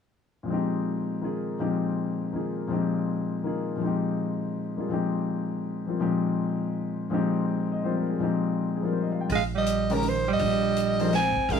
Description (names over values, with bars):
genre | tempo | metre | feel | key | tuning
modal jazz | 164 BPM | 3/4 | swing 64% on 8ths | unclear | A4 = 439 Hz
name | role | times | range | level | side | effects
warm concert grand piano | accompaniment | 0.4-11.6 s | Bb2 to G5 | -26 LUFS | left 3 dB | none
growling alto saxophone | second line | 9.3-11.6 s | Db3 to C4 | -27 LUFS | right 8 dB | none
upright bass | bass | 9.3-11.6 s | Bb1 | -30 LUFS | right 4 dB | none
swinging big-band drum kit | drums | 9.3-11.6 s | hi-hat, kick drum, snare drum | -37 LUFS | left 1 dB | none
growling soprano saxophone | melody | 9.4-11.6 s | Bb4 to Ab5 | -26 LUFS | equal | plate reverb
room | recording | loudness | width
moderate studio ambience, RT60 0.5 s | none | -25 LUFS | side -7 dB against mid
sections
0.5-9.3 A section; 9.3-11.6 B section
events
none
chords
0.5 Bb13sus4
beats
| 0.49 0.86 1.23 | 1.59 1.96 2.33 | 2.70 3.06 3.43 | 3.80 4.17 4.53 | 4.90 5.27 5.63 | 6.00 6.37 6.74 | 7.10 7.47 7.84 | 8.20 8.57 8.94 | 9.30 9.67 10.04 | 10.40 10.77 11.13 | 11.50